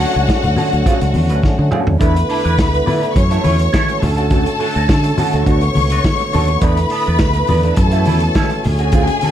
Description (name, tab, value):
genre	disco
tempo	104 BPM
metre	4/4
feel	straight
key	unclear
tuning	A4 = 438 Hz
part	clear studio string section	second line	0.0-9.3 s	F#4 to C#6	-20 LUFS	left 2 dB	none
part	semi-hollow electric guitar	accompaniment	0.0-9.3 s	B3 to B4	-22 LUFS	right 3 dB	wah
part	percussive tonewheel organ	sustained chords	0.0-9.3 s	D3 to F#4	-23 LUFS	right 1 dB	chorus vibrato, slow rotary speaker
part	fingered electric bass	bass	0.0-9.1 s	C#2 to D3	-16 LUFS	equal	none
part	vintage drum kit	drums	0.0-9.3 s	hi-hat, kick drum, snare drum, toms	-18 LUFS	equal	none
part	congas	percussion	0.3-9.3 s	none	-22 LUFS	left 3 dB	none
room	studio reverb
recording	dark, warm production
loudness	-12 LUFS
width	side -10 dB against mid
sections	0.0-2.0 A section; 2.0-9.3 B section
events	drum fill 1.4-2.0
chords	0.0 Dmaj7; 2.0 E7sus4; 3.2 F#m7; 4.0 Dmaj7; 5.5 Bm7; 6.6 E7sus4; 7.8 F#m7; 8.6 Dmaj7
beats	0.28 0.86 1.43 | 2.01 2.59 3.16 3.74 | 4.32 4.89 5.47 6.05 | 6.62 7.20 7.78 8.36 | 8.93